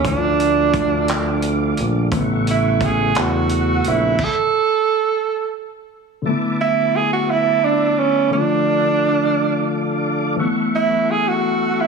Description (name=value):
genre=slow six-eight R&B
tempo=58 BPM (dotted quarters)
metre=6/8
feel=straight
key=A major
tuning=A4 = 439 Hz
part: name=breathy tenor saxophone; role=melody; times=0.0-11.9 s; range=C#4 to A4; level=-18 LUFS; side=right 6 dB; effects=plate reverb
part: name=mellow tine electric piano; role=accompaniment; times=0.0-11.9 s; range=C#3 to F4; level=-21 LUFS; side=left 4 dB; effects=analog chorus, plate reverb
part: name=tonewheel organ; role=sustained chords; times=0.0-11.9 s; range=A3 to D6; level=-26 LUFS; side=right 1 dB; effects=chorus vibrato, slow rotary speaker, plate reverb
part: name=smooth synth bass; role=bass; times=0.0-4.2 s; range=A1 to E2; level=-21 LUFS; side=right 2 dB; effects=none
part: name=warm soul drum kit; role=drums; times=0.0-4.3 s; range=crash cymbal, handclaps, hi-hat, kick drum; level=-24 LUFS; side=right 1 dB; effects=none
room=moderate studio reverb, RT60 0.8 s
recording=heavily compressed radio sound, multiband compression, small room reverb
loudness=-16 LUFS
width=side -5 dB against mid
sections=0.0-6.3 A section; 6.3-11.9 A section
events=stop 4.2-6.3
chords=0.0 Dm; 2.1 A6; 4.2 N.C.; 6.3 E7sus4; 8.3 Dm; 10.4 A6